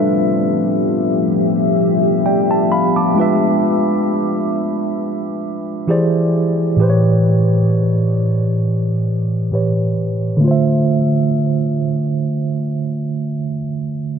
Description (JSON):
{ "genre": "R&B", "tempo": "66 BPM", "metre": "4/4", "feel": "swing 54% on 16ths", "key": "D dorian", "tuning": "A4 = 442 Hz", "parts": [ { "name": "mellow tine electric piano", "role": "accompaniment", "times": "0.0-14.2 s", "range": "A2 to D6", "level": "-15 LUFS", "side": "right 1 dB", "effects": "medium stereo tremolo, low-pass filter" }, { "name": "deep dark ambient pad", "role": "sustained chords", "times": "0.0-3.1 s", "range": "F3 to E5", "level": "-18 LUFS", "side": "left 3 dB", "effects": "chorus, built-in reverb, low-pass filter" } ], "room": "wet cathedral reverb, RT60 6.7 s", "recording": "dreamy mix soaked in reverb", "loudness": "-14 LUFS", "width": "side -7 dB against mid", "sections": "0.0-10.4 A section; 10.4-14.1 B section", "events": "filter sweep 0.0-10.4", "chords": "0.0 G13; 3.2 E7b9/G#; 5.9 E7alt; 6.8 A9; 10.4 Dm9" }